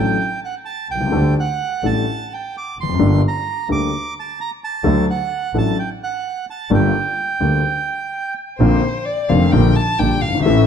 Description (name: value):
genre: tango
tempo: 129 BPM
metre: 4/4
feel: rubato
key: G harmonic minor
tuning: A4 = 440 Hz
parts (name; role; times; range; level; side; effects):
- bandoneon; melody; 0.0-8.3 s; F#5 to D6; -23 LUFS; right 6 dB; tape echo
- clear concert grand piano; accompaniment; 0.0-10.6 s; F1 to A4; -17 LUFS; left 3 dB; none
- clear double bass; bass; 0.0-10.6 s; F1 to D2; -19 LUFS; right 3 dB; none
- warm violin; second line; 8.6-10.7 s; C5 to A5; -21 LUFS; left 3 dB; none
room: moderate large studio reverb, RT60 1.1 s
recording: dark, warm production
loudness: -16 LUFS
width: side -8 dB against mid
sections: 0.0-8.6 A section; 8.6-10.7 B section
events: violin solo 8.6-10.7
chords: 0.0 D; 1.1 Dsus4; 3.0 Gmadd9; 4.8 D; 6.7 Gmadd9; 8.6 Bbadd9; 9.5 Gm/Bb